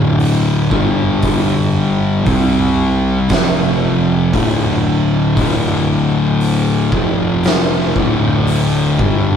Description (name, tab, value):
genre	stoner and doom metal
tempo	58 BPM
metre	4/4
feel	straight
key	D minor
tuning	A4 = 441 Hz
part	thick fuzz guitar	riff	0.0-9.4 s	D2 to C4	-16 LUFS	left 3 dB	distortion
part	thick fuzz guitar	riff	0.0-9.4 s	D2 to C4	-20 LUFS	right 5 dB	distortion
part	fuzz picked electric bass	bass	0.0-9.4 s	D1 to C2	-20 LUFS	equal	overdrive
part	oversized low-tuned drum kit	drums	0.2-9.2 s	hi-hat, kick drum, snare drum	-19 LUFS	right 1 dB	none
room	light reverb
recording	rough rehearsal-room recording, tube saturation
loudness	-12 LUFS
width	side -8 dB against mid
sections	0.0-9.4 A section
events	none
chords	0.0 D5; 0.7 G5; 2.3 C5; 3.3 F5; 4.3 D5; 6.9 F5; 8.0 D5